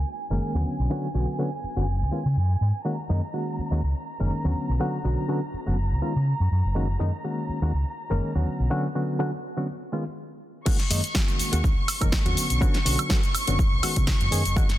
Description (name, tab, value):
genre	filtered disco house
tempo	123 BPM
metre	4/4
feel	swing 54% on 16ths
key	F# major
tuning	A4 = 437 Hz
part	warm chamber violin section	sustained chords	0.0-14.8 s	G#5 to C#6	-34 LUFS	right 1 dB	sidechain pumping, low-pass filter
part	barky reed electric piano	accompaniment	0.3-14.7 s	D3 to A#4	-29 LUFS	equal	overdrive, fast tremolo, phaser, sidechain pumping, low-pass filter
part	fingered electric bass	bass	0.3-14.8 s	F#1 to C#3	-24 LUFS	equal	sidechain pumping, low-pass filter
part	electronic kick drum	drums	10.7-14.7 s	none	-23 LUFS	equal	none
part	punchy analog drum machine	drums	10.7-14.8 s	cabasa, crash cymbal, hi-hat, snare drum, woodblock	-28 LUFS	equal	none
room	light reverb, digital ambience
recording	dense, heavily limited modern master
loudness	-23 LUFS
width	side -14 dB against mid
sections	0.0-10.7 A section; 10.7-14.8 B section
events	filter sweep 0.0-10.7; break 8.7-10.7; drop 10.7-14.8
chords	0.0 F#69; 0.7 Bmadd9; 1.9 C#sus4; 2.9 F#69; 4.6 Bmadd9; 5.8 C#sus4; 6.8 F#69; 8.5 Bmadd9; 9.7 C#sus2; 10.7 F#69; 12.4 Bmadd9; 13.6 C#9sus4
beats	0.42 | 0.91 1.39 1.88 2.37 | 2.86 3.34 3.83 4.32 | 4.81 5.30 5.78 6.27 | 6.76 7.25 7.74 8.22 | 8.71 9.20 9.69 10.17 | 10.66 11.15 11.64 12.12 | 12.61 13.10 13.59 14.08 | 14.56